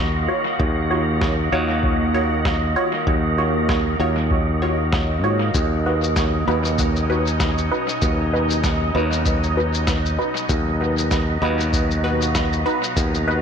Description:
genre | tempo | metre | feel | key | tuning
ambient dub | 97 BPM | 4/4 | swing 58% on 16ths | unclear | A4 = 440 Hz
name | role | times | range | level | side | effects
soft additive organ-like pad | sustained chords | 0.0-13.4 s | B2 to Gb4 | -26 LUFS | equal | ensemble chorus, built-in reverb
modern bright fingered electric bass | bass | 0.0-13.4 s | Eb2 to Ab2 | -21 LUFS | equal | none
wind-like tuned noise texture | texture | 0.0-13.4 s | Eb5 | -28 LUFS | right 4 dB | built-in reverb
filtered dub chord stab | stabs | 0.3-13.4 s | D#4 to Db5 | -25 LUFS | equal | phaser, dub echo
electronic kick drum | drums | 0.6-13.1 s | none | -25 LUFS | equal | none
electronic snare drum and shaker | drums | 1.2-13.2 s | none | -29 LUFS | left 2 dB | dub echo
room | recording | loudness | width
light reverb, digital ambience | echo-heavy mix | -18 LUFS | side -7 dB against mid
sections
0.0-13.4 A section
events
none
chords
0.0 Ebm9; 5.5 B/D#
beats
| 0.60 1.22 1.83 2.45 | 3.07 3.69 4.31 4.93 | 5.55 6.16 6.78 7.40 | 8.02 8.64 9.26 9.88 | 10.49 11.11 11.73 12.35 | 12.97

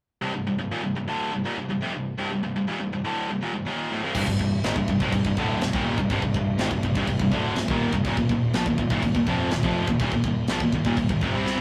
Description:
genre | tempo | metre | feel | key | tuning
heavy metal | 123 BPM | 4/4 | straight | C minor | A4 = 441 Hz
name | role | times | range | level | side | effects
high-gain distorted guitar | riff | 0.2-11.6 s | C2 to C4 | -34 LUFS | equal | none
tight distorted guitar | riff | 0.2-11.6 s | C2 to C4 | -29 LUFS | equal | distortion
fuzz picked electric bass | bass | 4.1-11.6 s | C1 to C2 | -33 LUFS | equal | overdrive
tight metal drum kit | drums | 4.1-11.6 s | crash cymbal, kick drum, snare drum, toms | -30 LUFS | equal | none
distorted electric guitar | riff | 4.2-11.6 s | C2 to C4 | -30 LUFS | equal | distortion
room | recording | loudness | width
light reverb | rough rehearsal-room recording, tube saturation | -25 LUFS | mono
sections
0.2-4.2 A section; 4.2-11.6 B section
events
drum fill 11.5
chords
0.2 Cm; 8.1 Eb5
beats
| 0.22 0.71 1.20 1.70 | 2.19 2.68 3.17 3.66 | 4.15 4.64 5.13 5.62 | 6.11 6.59 7.08 7.57 | 8.06 8.54 9.03 9.52 | 10.00 10.49 10.97 11.46

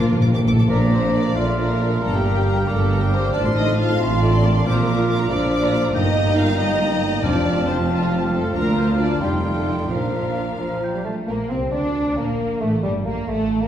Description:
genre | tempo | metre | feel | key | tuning
classical, dramatic, fast romantic movement for symphony orchestra | 91 BPM (dotted quarters) | 6/8 | rubato | Bb major | A4 = 438 Hz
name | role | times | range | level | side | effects
rich symphonic violin section | melody | 0.0-13.7 s | G3 to D6 | -32 LUFS | left 2 dB | none
dark symphonic violin section | second line | 0.0-13.7 s | G3 to F5 | -27 LUFS | left 1 dB | none
mellow clarinet | second line | 0.0-11.1 s | C4 to F4 | -29 LUFS | equal | none
mellow hollow concert flute | second line | 0.0-11.0 s | Bb4 to F6 | -31 LUFS | left 2 dB | none
warm oboe | second line | 0.0-11.2 s | D4 to Bb5 | -31 LUFS | right 2 dB | none
mellow bassoon | accompaniment | 0.0-13.7 s | F3 to D4 | -28 LUFS | equal | none
rich symphonic viola section | accompaniment | 0.0-13.7 s | G3 to D5 | -30 LUFS | equal | none
mellow French horn section | sustained chords | 0.0-10.6 s | F3 to F4 | -27 LUFS | left 2 dB | none
clear symphonic double bass section | bass | 0.0-13.7 s | F1 to D2 | -23 LUFS | right 2 dB | none
rich symphonic cello section | bass | 0.0-13.7 s | D2 to D4 | -25 LUFS | right 2 dB | none
timpani | percussion | 0.0-1.3, 7.2-7.8 s | F2 to Bb2 | -21 LUFS | equal | none
room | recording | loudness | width
wet recital hall reverb, RT60 1.9 s | recorded in a church or concert hall | -17 LUFS | side -10 dB against mid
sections
0.7-11.3 A section; 11.3-13.7 A section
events
timpani fill 0.0-0.7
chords
0.0 Bb; 2.0 Gm; 3.3 F/A; 4.7 Bb; 5.9 Eb/G; 7.2 F; 8.5 Bb/D; 9.2 F9; 9.9 Bb; 12.6 Gm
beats
| 0.68 1.35 | 2.02 2.68 | 3.34 4.00 | 4.65 5.30 | 5.94 6.58 | 7.23 7.88 | 8.54 9.21 | 9.89 10.59 | 11.29 11.95 | 12.61 13.28

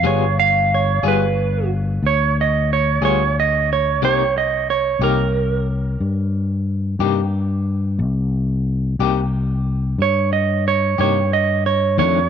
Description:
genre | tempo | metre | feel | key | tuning
slow blues | 60 BPM (dotted quarters) | 12/8 | straight | unclear | A4 = 440 Hz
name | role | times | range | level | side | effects
clean electric guitar | melody | 0.0-12.3 s | Bb4 to F5 | -18 LUFS | right 8 dB | none
electric guitar at the edge of break-up | accompaniment | 0.0-12.2 s | F2 to Ab4 | -23 LUFS | left 15 dB | tremolo
fingered electric bass | bass | 0.0-12.3 s | G1 to G2 | -20 LUFS | left 2 dB | none
room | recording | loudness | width
moderate spring reverb, RT60 2.7 s | 1960s-style stereo with parts hard left and right | -16 LUFS | side -8 dB against mid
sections
0.0-12.3 A section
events
clean electric guitar solo 0.0-12.3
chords
0.0 G7b9; 4.0 C5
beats
| 0.03 1.02 2.02 3.02 | 4.01 5.01 6.00 7.00 | 7.99 8.99 9.98 10.98 | 11.98

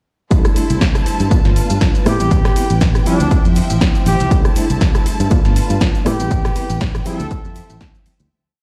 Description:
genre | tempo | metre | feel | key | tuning
filtered disco house | 120 BPM | 4/4 | swing 56% on 16ths | C major | A4 = 437 Hz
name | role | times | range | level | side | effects
reed electric piano | accompaniment | 0.3-8.3 s | F3 to F4 | -24 LUFS | equal | fast tremolo, phaser, vintage 12-bit sampler grit, sidechain pumping
bright studio string section | sustained chords | 0.3-8.3 s | F3 to A5 | -30 LUFS | equal | vintage 12-bit sampler grit, sidechain pumping
electronic kick drum | drums | 0.3-7.9 s | none | -18 LUFS | equal | overdrive
punchy analog drum machine | drums | 0.3-8.3 s | hi-hat, rim click, shaker, snare drum | -26 LUFS | equal | sidechain pumping on hats, sidechain pumping on perc
egg shaker | percussion | 0.3-8.3 s | none | -41 LUFS | equal | none
fingered electric bass | bass | 0.7-8.3 s | G1 to A2 | -20 LUFS | equal | sidechain pumping
warm horn section | melody | 2.1-7.8 s | D4 to A4 | -26 LUFS | equal | sidechain pumping, delay
room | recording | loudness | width
digital ambience | played on a big sound system in a bare room, stone room reverb | -15 LUFS | mono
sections
0.3-8.3 drop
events
drop 0.3-8.3; fade-out 5.6-8.3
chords
0.3 C6; 1.3 G9; 2.1 Am9; 3.1 Dm11; 4.3 C6; 5.3 G9; 6.1 Am9; 7.1 Dm11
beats
| 0.31 0.81 1.31 1.81 | 2.31 2.81 3.31 3.81 | 4.31 4.81 5.31 5.81 | 6.31 6.81 7.31 7.81

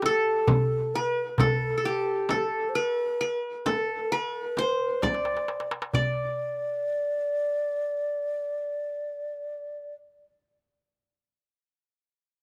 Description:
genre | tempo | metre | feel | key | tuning
Turkish makam ensemble | 132 BPM (eighths) | 10/8 | straight | D makam hicaz | A4 = 440 Hz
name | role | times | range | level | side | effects
qanun | melody | 0.0-10.0 s | G4 to D5 | -30 LUFS | equal | slapback echo
mellow hollow alto flute | second line | 0.0-9.9 s | G4 to D5 | -32 LUFS | equal | slapback echo
darbuka | percussion | 0.0-6.4 s | none | -30 LUFS | equal | none
frame drum | percussion | 0.0-6.4 s | none | -34 LUFS | equal | none
room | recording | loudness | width
light reverb | recorded outdoors, with no room sound | -28 LUFS | mono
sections
0.0-5.9 A section; 5.9-10.5 B section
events
drum fill 5.0-5.9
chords
none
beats
0.03 0.48 0.94 | 1.39 1.85 2.30 2.75 3.21 3.66 4.12 4.57 5.02 5.48 | 5.93 6.39 6.84 7.29 7.75 8.20 8.66 9.11 9.57

